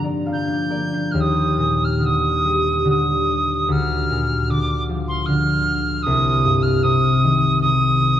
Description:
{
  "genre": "celtic folk, Celtic slow air",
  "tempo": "67-79 BPM",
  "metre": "3/4",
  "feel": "rubato",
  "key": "unclear",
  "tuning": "A4 = 440 Hz",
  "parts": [
    { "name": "tin whistle", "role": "melody", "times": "0.0-8.2 s", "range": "C6 to G6", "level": "-21 LUFS", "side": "right 2 dB", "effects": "none" },
    { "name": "concert harp", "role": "accompaniment", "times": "0.0-8.2 s", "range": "C2 to F5", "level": "-18 LUFS", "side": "left 1 dB", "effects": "none" }
  ],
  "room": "wet church reverb, RT60 3.9 s",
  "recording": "dark, warm production",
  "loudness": "-17 LUFS",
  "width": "side -11 dB against mid",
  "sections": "0.0-1.2 A section; 1.2-8.2 B section",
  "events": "harp fill 0.0-1.2",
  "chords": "0.0 Gm7; 1.2 Ebmaj7; 3.7 Bb/D; 6.0 Cm",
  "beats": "0.28 | 1.16 2.02 2.86 | 3.68 4.49 5.27 | 6.05 6.83 7.62"
}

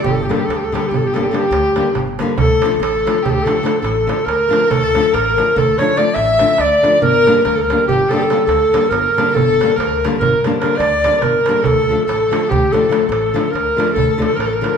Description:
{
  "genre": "balkan folk, Balkan wedding band",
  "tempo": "284 BPM (eighths)",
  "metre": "11/8",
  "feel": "straight",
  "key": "unclear",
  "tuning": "A4 = 440 Hz",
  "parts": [
    { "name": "mellow clarinet", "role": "melody", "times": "0.0-14.8 s", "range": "G4 to E5", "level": "-16 LUFS", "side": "equal", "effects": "none" },
    { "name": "rich violin", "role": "second line", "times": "0.0-14.8 s", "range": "G4 to E5", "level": "-20 LUFS", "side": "left 3 dB", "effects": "none" },
    { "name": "upright bass", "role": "bass", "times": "0.0-14.6 s", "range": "G1 to D2", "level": "-24 LUFS", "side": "right 1 dB", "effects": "none" },
    { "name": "darbuka", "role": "percussion", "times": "0.1-14.8 s", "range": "none", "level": "-22 LUFS", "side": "right 4 dB", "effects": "none" },
    { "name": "flamenco guitar", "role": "accompaniment", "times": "0.3-14.8 s", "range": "D3 to D4", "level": "-21 LUFS", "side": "left 3 dB", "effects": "none" }
  ],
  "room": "wet large studio reverb, RT60 1.2 s",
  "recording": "band playing live in one room",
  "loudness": "-13 LUFS",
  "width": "side -7 dB against mid",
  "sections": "0.0-2.4 A section; 2.4-14.8 B section",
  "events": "none",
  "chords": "0.1 Gm; 2.4 Dm; 7.0 Gm; 11.7 Dm",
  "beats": "| 0.05 0.26 0.47 0.69 0.90 1.11 1.32 1.53 1.75 1.96 2.17 | 2.38 2.59 2.80 3.02 3.23 3.44 3.65 3.86 4.07 4.29 4.50 | 4.71 4.92 5.13 5.34 5.55 5.76 5.98 6.19 6.40 6.61 6.82 | 7.03 7.24 7.45 7.67 7.88 8.09 8.30 8.51 8.72 8.93 9.14 | 9.35 9.56 9.77 9.98 10.19 10.40 10.61 10.82 11.03 11.24 11.45 | 11.66 11.87 12.08 12.29 12.50 12.71 12.92 13.13 13.34 13.55 13.76 | 13.97 14.18 14.39 14.60"
}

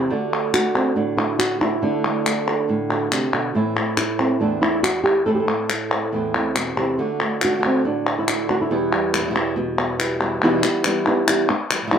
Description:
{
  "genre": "flamenco",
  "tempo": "140 BPM",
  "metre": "4/4",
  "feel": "straight",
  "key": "E minor",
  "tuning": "A4 = 440 Hz",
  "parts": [
    { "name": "flamenco guitar", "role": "melody", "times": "0.0-12.0 s", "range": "E2 to A4", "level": "-21 LUFS", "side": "right 1 dB", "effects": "none" },
    { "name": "flamenco guitar", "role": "stabs", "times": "0.0-12.0 s", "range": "E2 to F#4", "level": "-26 LUFS", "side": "right 2 dB", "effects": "none" },
    { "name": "palmas hand claps", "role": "percussion", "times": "0.3-12.0 s", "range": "none", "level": "-23 LUFS", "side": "left 3 dB", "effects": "none" }
  ],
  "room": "light reverb",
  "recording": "none",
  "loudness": "-18 LUFS",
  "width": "side -8 dB against mid",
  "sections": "0.0-10.4 A section; 10.4-12.0 B section",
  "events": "none",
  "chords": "0.1 D; 3.5 Am; 7.0 D; 8.7 Em",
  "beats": "| 0.10 0.54 0.97 1.40 | 1.83 2.26 2.69 3.12 | 3.55 3.98 4.41 4.84 | 5.27 5.70 6.13 6.56 | 6.99 7.42 7.85 8.28 | 8.71 9.13 9.56 9.99 | 10.42 10.85 11.28 11.71"
}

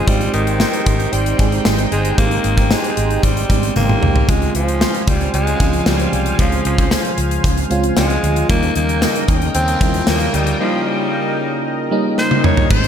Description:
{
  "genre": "1980s-style pop",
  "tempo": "114 BPM",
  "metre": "4/4",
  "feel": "straight",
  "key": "unclear",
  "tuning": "A4 = 440 Hz",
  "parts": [
    { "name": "raspy alto saxophone", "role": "melody", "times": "0.0-12.9 s", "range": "Eb3 to Db5", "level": "-21 LUFS", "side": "equal", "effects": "ping-pong delay" },
    { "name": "FM electric piano with soft pad layer", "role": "accompaniment", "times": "0.0-12.9 s", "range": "F3 to Ab4", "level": "-21 LUFS", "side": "right 2 dB", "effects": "chorus" },
    { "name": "sweeping resonant pad", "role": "sustained chords", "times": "0.0-12.9 s", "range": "C3 to Ab5", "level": "-24 LUFS", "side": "equal", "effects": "chorus" },
    { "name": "vintage muted fingered electric bass", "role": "bass", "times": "0.1-12.9 s", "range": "G1 to Eb2", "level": "-20 LUFS", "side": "equal", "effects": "none" },
    { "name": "gated 80s drum kit", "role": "drums", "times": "0.1-12.9 s", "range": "crash cymbal, hi-hat, kick drum, snare drum, tambourine, toms", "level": "-17 LUFS", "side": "equal", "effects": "none" },
    { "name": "tambourine", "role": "percussion", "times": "0.6-10.2 s", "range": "none", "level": "-34 LUFS", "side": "left 8 dB", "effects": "none" }
  ],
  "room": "moderate concert hall reverb, RT60 2.1 s",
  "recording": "big arena sound",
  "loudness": "-14 LUFS",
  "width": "side -8 dB against mid",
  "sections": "0.0-12.7 A section",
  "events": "drum fill 3.8-4.3, 12.2-12.7",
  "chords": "0.1 Abmaj7; 4.3 Dbmaj7; 8.5 Eb7",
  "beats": "| 0.07 0.60 1.13 1.65 | 2.18 2.71 3.23 3.76 | 4.29 4.81 5.34 5.86 | 6.39 6.92 7.44 7.97 | 8.50 9.02 9.55 10.07 | 10.60 11.13 11.65 12.18 | 12.71"
}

